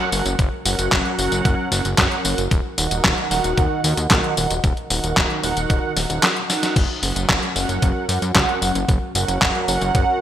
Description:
italo disco; 113 BPM; 4/4; straight; F# major; A4 = 436 Hz
mellow synth brass; stabs; 0.0-10.2 s; D#3 to F#5; -22 LUFS; right 2 dB; chorus, phaser, cassette tape, digital delay
fat analog bass; bass; 0.1-10.0 s; D#1 to F#2; -25 LUFS; equal; tube saturation, digital delay
detuned 8-bit digital drum machine; drums; 0.1-10.1 s; crash cymbal, handclaps, hi-hat, snare drum, tambourine; -20 LUFS; left 1 dB; studio reverb, gated reverb
electronic kick drum; drums; 0.4-10.1 s; -20 LUFS; equal; studio reverb
moderate plate reverb, RT60 2.0 s, digital ambience; bright 1980s-style digital production; -17 LUFS; side -11 dB against mid
0.0-10.2 A section
drum fill 6.5
0.0 F#; 2.5 D#m; 6.8 F#

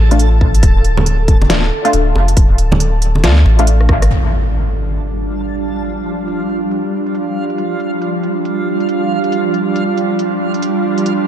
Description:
deep dubstep; 138 BPM; 4/4; swing 62% on 16ths, half-time; A4 = 440 Hz
soft dub sub bass; bass; 0.0-4.1 s; D1 to D2; -12 LUFS; equal
backwards swelling texture; texture; 0.0-11.3 s; F3 to A5; -21 LUFS; right 2 dB; built-in reverb
filtered dub chord stab; stabs; 0.1-4.1 s; A3 to F4; -19 LUFS; left 2 dB; analog chorus, dub echo
dubstep drum kit; drums; 0.1-11.2 s; hi-hat, rim click, snare drum; -21 LUFS; equal; low-pass filter on hats, low-pass filter on snare
electronic kick drum; drums; 0.4-4.0 s; -11 LUFS; equal
bongos and congas; percussion; 1.0-3.6 s; -19 LUFS; right 2 dB; dub echo
bowed-like drone; sustained chords; 4.8-11.3 s; G3 to D4; -18 LUFS; right 2 dB; built-in reverb
impact; sound effects; 4.1-5.8 s; -19 LUFS; equal
light reverb, digital ambience; dark, warm production; -12 LUFS; side -10 dB against mid
0.0-4.1 A section; 4.1-11.3 B section
drum fill 3.8-4.1; band accent 4.0; impact 4.1-5.8; filter sweep on drum 4.1-11.3
0.0 Dm; 4.1 G5

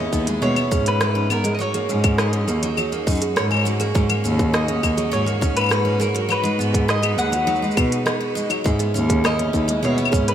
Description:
folktronica; 102 BPM; 4/4; straight; A4 = 440 Hz
mandolin; melody; 0.0-10.3 s; A#4 to F#5; -25 LUFS; left 1 dB; vintage 12-bit sampler grit, ping-pong delay
clear string quartet; sustained chords; 0.0-10.3 s; A#2 to B4; -31 LUFS; right 1 dB
picked steel-string acoustic guitar; arpeggios; 0.0-10.3 s; F#3 to C#5; -27 LUFS; equal; ping-pong delay
rich cello; bass; 0.0-10.3 s; D#2 to B2; -22 LUFS; equal
kalimba; second line; 0.1-10.3 s; G#3 to G#5; -27 LUFS; right 5 dB; vintage 12-bit sampler grit, ping-pong delay
electronic kick drum; drums; 0.1-10.2 s; -21 LUFS; equal
organic electronic drum kit; drums; 0.1-10.3 s; claves, hi-hat, rim click, shaker; -25 LUFS; left 1 dB
moderate plate reverb, RT60 2.3 s; dreamy mix soaked in reverb; -18 LUFS; side -10 dB against mid
0.0-10.3 A section
0.0 C#m7; 1.6 D#m7; 6.3 G#m7; 8.7 C#m7

